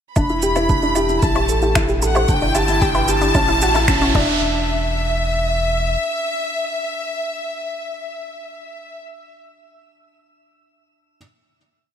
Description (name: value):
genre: piano and strings electronica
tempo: 113 BPM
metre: 4/4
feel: straight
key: unclear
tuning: A4 = 443 Hz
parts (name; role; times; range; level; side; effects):
- rich studio violin section; melody; 0.2-9.0 s; E5 to B5; -22 LUFS; left 1 dB; shimmer reverb
- analog pluck; arpeggios; 0.2-4.6 s; C#4 to C5; -25 LUFS; left 1 dB; chorus, sidechain pumping, digital delay, shimmer reverb
- felt-muted upright piano; riff; 0.2-11.2 s; C#4 to A4; -22 LUFS; equal; shimmer reverb
- round analog bass; bass; 0.2-6.0 s; E1 to A1; -23 LUFS; equal; tube saturation, sidechain pumping
- deep house drum kit; drums; 0.2-4.3 s; crash cymbal, finger snaps, shaker, woodblock; -25 LUFS; right 2 dB; overdrive
- electronic kick drum; drums; 0.2-4.3 s; none; -21 LUFS; equal; overdrive
- riser; sound effects; 1.6-4.4 s; none; -28 LUFS; right 4 dB; none
room: moderate concert hall reverb, RT60 2.3 s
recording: none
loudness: -16 LUFS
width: side -9 dB against mid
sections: 0.2-4.4 build; 4.4-8.7 final hit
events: build-up 0.2-4.4; filter sweep on synth arpeggio sound 0.2-4.4; riser 1.6-4.4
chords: 0.2 Em7; 1.2 Am7; 2.3 Em7/G; 3.4 A6; 4.1 Dsus2/E